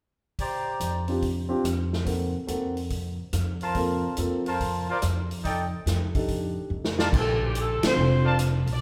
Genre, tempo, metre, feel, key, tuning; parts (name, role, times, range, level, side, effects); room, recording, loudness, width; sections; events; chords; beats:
jazz, big band swing; 142 BPM; 4/4; swing 67% on 8ths; Bb major; A4 = 440 Hz
warm trumpet section; stabs; 0.4-1.0, 3.6-8.3 s; Eb4 to Bb5; -32 LUFS; equal
swinging big-band drum kit; drums; 0.4-8.7 s; crash cymbal, hi-hat, kick drum, ride cymbal, rim click, snare drum; -33 LUFS; equal
upright bass; bass; 0.8-8.8 s; F1 to F2; -30 LUFS; equal
warm grand piano; accompaniment; 1.1-8.4 s; Bb3 to A4; -32 LUFS; equal
clear saxophone section; melody; 7.2-8.8 s; G4 to D5; -30 LUFS; equal
wet recital hall reverb, RT60 1.7 s; recorded in a church or concert hall; -27 LUFS; mono
0.4-7.1 A section; 7.1-8.8 B section
drum fill 6.7-7.1; band accent 7.8
0.4 Bb69; 2.1 Fadd11; 5.4 F13; 7.1 Bbmaj7
| 0.38 0.80 1.23 1.65 | 2.07 2.49 2.91 3.33 | 3.76 4.18 4.60 5.02 | 5.44 5.86 6.29 6.71 | 7.13 7.55 7.97 8.39 | 8.81